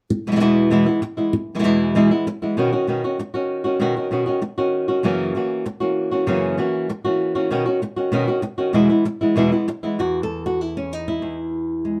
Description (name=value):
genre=flamenco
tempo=194 BPM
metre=4/4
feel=straight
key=E major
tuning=A4 = 440 Hz
part: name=flamenco guitar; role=melody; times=0.1-12.0 s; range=E2 to A4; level=-21 LUFS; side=equal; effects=none
room=moderate small room reverb, RT60 0.6 s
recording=band playing live in one room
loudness=-21 LUFS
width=mono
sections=0.1-10.0 A section; 10.0-12.0 B section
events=none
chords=0.1 E; 2.6 Badd9; 5.0 F#7; 7.5 Badd9; 8.7 E; 10.0 N.C.